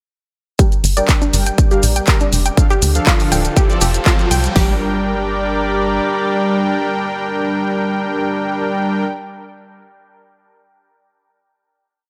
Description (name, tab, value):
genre	progressive house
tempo	121 BPM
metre	4/4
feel	straight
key	G minor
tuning	A4 = 440 Hz
part	lush unison pad	sustained chords	1.3-9.0 s	D3 to D5	-25 LUFS	equal	chorus, sidechain pumping
part	analog pluck	arpeggios	0.6-4.8 s	D4 to G5	-25 LUFS	equal	chorus, sidechain pumping, dub echo
part	soft supersaw	stabs	0.6-9.0 s	F3 to Bb5	-22 LUFS	equal	sidechain pumping, low-pass filter, dub echo
part	big-room dance drum kit	drums	0.6-4.7 s	hi-hat, kick drum, snare drum	-16 LUFS	equal	none
part	big-room dance drum kit	drums	0.6-4.5 s	handclaps, hi-hat	-23 LUFS	equal	sidechain pumping on hats
part	maracas	percussion	0.6-4.5 s	none	-26 LUFS	equal	none
part	riser	sound effects	2.4-4.6 s	none	-31 LUFS	equal	none
part	tight sequencer bass	bass	0.8-6.0 s	D1 to D2	-20 LUFS	equal	sidechain pumping
room	light reverb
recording	none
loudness	-16 LUFS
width	mono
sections	0.6-4.6 build; 4.6-8.5 final chord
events	build-up 0.6-4.6; filter sweep on synth pluck 0.6-4.6; filter sweep on supersaw synth 0.6-4.6; filter sweep on analog synth pad 0.6-4.6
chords	0.6 Gm; 2.6 Dm; 3.6 F; 4.6 Gm